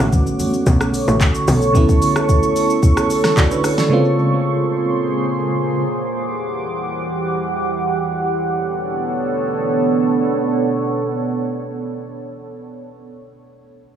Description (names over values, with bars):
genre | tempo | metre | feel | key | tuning
amapiano | 111 BPM | 4/4 | straight | B minor | A4 = 440 Hz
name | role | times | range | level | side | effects
FM electric piano with tremolo | accompaniment | 0.0-5.8 s | C#3 to D5 | -18 LUFS | right 1 dB | analog delay
deep dark ambient pad | sustained chords | 0.0-12.2 s | E3 to D6 | -19 LUFS | right 2 dB | chorus, built-in reverb
tight log drum bass | bass | 0.0-1.7 s | A1 to B1 | -18 LUFS | equal | none
smooth R&B drum kit | drums | 0.0-3.9 s | handclaps, hi-hat, kick drum, rim click, shaker, snare drum | -17 LUFS | equal | none
congas | percussion | 0.1-1.6 s | none | -27 LUFS | left 3 dB | none
room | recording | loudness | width
light reverb, digital ambience | echo-heavy mix, small room ambience | -15 LUFS | side -9 dB against mid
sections
0.0-8.2 A section; 8.2-12.6 B section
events
drop 0.0-8.2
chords
0.0 Bm9; 3.9 A#m9; 5.8 Em9; 8.2 Bm9